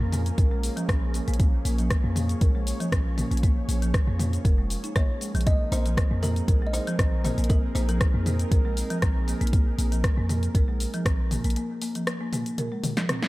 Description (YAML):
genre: afro house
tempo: 118 BPM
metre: 4/4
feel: straight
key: unclear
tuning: A4 = 438 Hz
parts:
  - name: kalimba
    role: melody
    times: 0.0-1.1, 5.0-8.6 s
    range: Bb4 to Eb5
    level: -34 LUFS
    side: equal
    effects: dub echo
  - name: warm analog pad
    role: sustained chords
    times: 0.0-13.3 s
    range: F3 to Db5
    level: -36 LUFS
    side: right 2 dB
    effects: wide subtle chorus, sidechain pumping
  - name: folk marimba with medium hard mallets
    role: arpeggios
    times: 0.0-13.2 s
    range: F3 to Bb4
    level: -31 LUFS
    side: equal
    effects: sidechain pumping, dub echo
  - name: warm 808-style bass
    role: bass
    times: 0.0-11.6 s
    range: F1 to F2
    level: -27 LUFS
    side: equal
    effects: sidechain pumping
  - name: deep house drum kit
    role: drums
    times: 0.1-13.3 s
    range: cabasa, hi-hat, rim click, snare drum, toms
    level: -31 LUFS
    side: left 1 dB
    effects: none
  - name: electronic kick drum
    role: drums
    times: 0.4-11.2 s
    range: none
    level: -22 LUFS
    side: equal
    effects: none
room: light reverb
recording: dark, warm production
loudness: -22 LUFS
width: side -19 dB against mid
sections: 0.0-13.3 A section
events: break 11.6-13.3; drum fill 12.8-13.3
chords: 0.0 Bbm7; 5.5 Ab69/Bb